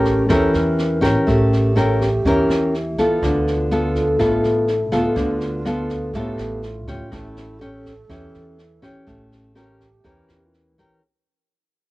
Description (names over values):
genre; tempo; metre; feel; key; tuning
bossa nova; 123 BPM; 4/4; straight; unclear; A4 = 438 Hz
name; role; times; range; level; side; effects
breathy mellow wooden-headed alto flute; second line; 0.0-11.0 s; E4 to Bb4; -28 LUFS; right 3 dB; cassette tape, plate reverb
nylon-string guitar; accompaniment; 0.0-11.0 s; A2 to Bb4; -18 LUFS; left 1 dB; cassette tape, plate reverb
upright bass; bass; 0.0-10.9 s; A1 to E2; -24 LUFS; equal; none
jazz brush drum kit; drums; 0.0-10.8 s; kick drum, rim click, snare drum; -30 LUFS; equal; cassette tape
room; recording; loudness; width
wet booth ambience, RT60 0.3 s; home recording on cassette; -16 LUFS; side -19 dB against mid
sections
0.0-11.0 A section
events
fade-out 0.0-11.0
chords
0.0 A7b9; 3.2 Dm6; 7.1 A7b9